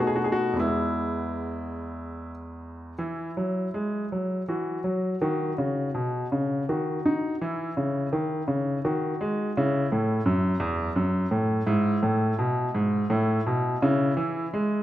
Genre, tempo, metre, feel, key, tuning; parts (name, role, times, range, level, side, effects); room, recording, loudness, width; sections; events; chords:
classical, baroque-style suite movement for grand piano; 74-87 BPM; 3/4; rubato; E major, A major from 11.7 s; A4 = 441 Hz
clear baby grand piano; solo; 0.0-14.8 s; E2 to G#4; -24 LUFS; equal
wet recital hall reverb, RT60 1.4 s; minimal, uncompressed stereo recording; -24 LUFS; side -13 dB against mid
0.0-3.0 A section; 3.0-14.8 B section
0.0 B7; 0.6 E; 4.5 Esus2; 5.2 B; 6.7 D#m; 7.4 C#madd9; 8.8 G#5/D#; 9.6 C#m; 11.7 E/G#; 13.1 A5; 13.8 A/C# (rootless)